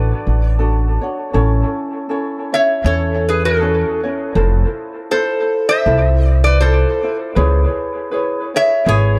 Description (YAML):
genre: Hawaiian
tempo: 80 BPM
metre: 4/4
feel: swing 57% on 8ths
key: A major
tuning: A4 = 442 Hz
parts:
  - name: metal-body resonator slide guitar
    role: melody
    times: 0.0-9.2 s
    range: F#4 to E5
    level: -19 LUFS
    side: equal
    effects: dub echo
  - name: ukulele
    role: accompaniment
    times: 0.0-9.2 s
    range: C#4 to C#5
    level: -24 LUFS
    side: equal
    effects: dub echo
  - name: upright bass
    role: bass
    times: 0.0-9.2 s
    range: F1 to E2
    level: -17 LUFS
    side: equal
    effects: none
room: light reverb, studio reverb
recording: echo-heavy mix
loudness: -16 LUFS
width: mono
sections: 0.0-1.3 A section; 1.3-9.2 B section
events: none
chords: 0.0 Dmaj7; 1.3 A; 4.4 Fmaj7; 7.4 C#m7